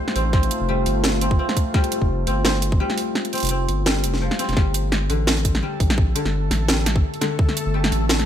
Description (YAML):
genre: half-time drum and bass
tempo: 170 BPM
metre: 4/4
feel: swing 55% on 16ths, half-time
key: unclear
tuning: A4 = 441 Hz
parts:
  - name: deep dark ambient pad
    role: sustained chords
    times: 0.0-4.5 s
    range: A3 to C5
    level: -27 LUFS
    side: equal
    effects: chorus, built-in reverb, sidechain pumping
  - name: koto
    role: arpeggios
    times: 0.0-8.3 s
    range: D3 to C4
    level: -26 LUFS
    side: left 3 dB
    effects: tape echo
  - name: drum and bass drum kit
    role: drums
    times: 0.1-8.3 s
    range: hi-hat, snare drum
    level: -23 LUFS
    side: right 1 dB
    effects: overdrive, studio reverb
  - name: saturated sub bass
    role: bass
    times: 0.2-8.3 s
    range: F1 to Bb1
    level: -22 LUFS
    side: equal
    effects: none
  - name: electronic kick drum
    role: drums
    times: 0.3-7.5 s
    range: none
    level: -19 LUFS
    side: equal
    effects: overdrive, studio reverb
  - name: backwards swelling texture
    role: texture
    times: 5.7-8.3 s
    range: A3 to A4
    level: -31 LUFS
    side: equal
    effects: built-in reverb
room: little or no reverb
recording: none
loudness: -18 LUFS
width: side -10 dB against mid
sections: 0.0-4.6 A section; 4.6-8.3 A section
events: drop 0.0-4.6, 4.6-8.3; kick drops out 3.2-4.6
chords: 0.0 F; 4.6 Gsus2